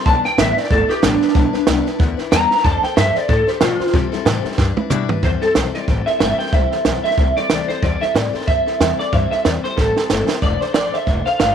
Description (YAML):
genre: rockabilly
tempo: 185 BPM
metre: 4/4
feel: swing 58% on 8ths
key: C major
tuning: A4 = 440 Hz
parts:
  - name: electric guitar through a small old amp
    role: melody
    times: 0.0-11.5 s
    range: D4 to Bb5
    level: -18 LUFS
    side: right 1 dB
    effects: ensemble chorus, tape echo
  - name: picked steel-string acoustic guitar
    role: accompaniment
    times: 0.0-11.5 s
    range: C3 to C5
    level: -24 LUFS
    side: left 11 dB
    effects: none
  - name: upright bass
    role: bass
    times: 0.1-11.5 s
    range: F1 to C3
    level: -22 LUFS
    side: left 1 dB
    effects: none
  - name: compact cocktail drum kit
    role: drums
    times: 0.1-11.5 s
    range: hi-hat, kick drum, snare drum, toms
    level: -19 LUFS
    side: right 3 dB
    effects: none
room: light reverb, small room ambience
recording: 1960s-style stereo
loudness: -15 LUFS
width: side -8 dB against mid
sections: 0.0-5.2 A section; 5.2-11.5 B section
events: clean electric guitar solo 0.0-5.2; drum fill 4.6-5.2, 9.8-10.4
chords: 0.1 G6; 2.6 F6; 3.9 C6; 4.6 G6; 5.2 C6; 10.4 F6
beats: | 0.06 0.38 0.71 1.03 | 1.35 1.68 2.00 2.32 | 2.64 2.97 3.29 3.61 | 3.94 4.26 4.58 4.91 | 5.23 5.55 5.88 6.20 | 6.53 6.85 7.18 7.50 | 7.83 8.15 8.47 8.80 | 9.12 9.45 9.77 10.10 | 10.42 10.75 11.07 11.40